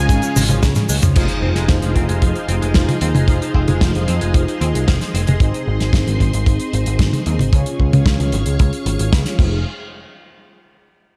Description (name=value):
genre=italo disco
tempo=113 BPM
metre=4/4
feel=straight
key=F minor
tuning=A4 = 440 Hz
part: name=mellow synth brass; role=melody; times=0.0-0.9 s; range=F5 to Ab5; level=-30 LUFS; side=equal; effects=chorus, vintage 12-bit sampler grit, delay
part: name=string machine, full ensemble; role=sustained chords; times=0.0-9.6 s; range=Ab3 to Db6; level=-31 LUFS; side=equal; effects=ensemble chorus, vintage 12-bit sampler grit
part: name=direct-recorded clean electric guitar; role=arpeggios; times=0.0-5.4 s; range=Db3 to C4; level=-31 LUFS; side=equal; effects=ensemble chorus, delay
part: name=analog synth brass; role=stabs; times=0.0-9.6 s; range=Ab3 to Db5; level=-27 LUFS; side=equal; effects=chorus, delay
part: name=overdriven picked electric bass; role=bass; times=0.0-9.6 s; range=F1 to F2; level=-21 LUFS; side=equal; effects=none
part: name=damped 70s drum kit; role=drums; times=0.1-9.5 s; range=cabasa, crash cymbal, hi-hat, snare drum, toms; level=-23 LUFS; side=equal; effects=small room ambience, gated reverb
part: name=kick drum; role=drums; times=0.1-9.5 s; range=none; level=-17 LUFS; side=equal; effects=small room ambience
part: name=impact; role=sound effects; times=1.2-3.3 s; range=none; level=-30 LUFS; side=equal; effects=none
room=small room ambience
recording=none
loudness=-17 LUFS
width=mono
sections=0.0-1.2 A section; 1.2-9.7 B section; 9.7-11.2 C section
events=drum fill 0.4-1.2; impact 1.2-3.3; filter sweep on analog polysynth 1.2-9.7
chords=0.0 Db; 1.2 Fm7; 5.4 Ab; 7.5 Db; 9.4 Fm7; 9.7 N.C.